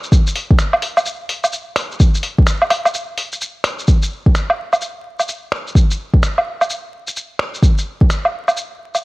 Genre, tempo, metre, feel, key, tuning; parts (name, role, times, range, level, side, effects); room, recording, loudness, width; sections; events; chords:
future garage; 128 BPM; 4/4; swing 63% on 16ths
lo-fi sampler-style drum kit; drums; 0.0-9.0 s; finger snaps, hi-hat, shaker, woodblock; -18 LUFS; equal; studio reverb
electronic kick drum; drums; 0.1-8.1 s; -12 LUFS; equal; overdrive, studio reverb
little or no reverb; vinyl crackle; -15 LUFS; side -22 dB against mid
0.0-3.9 A section; 3.9-9.0 B section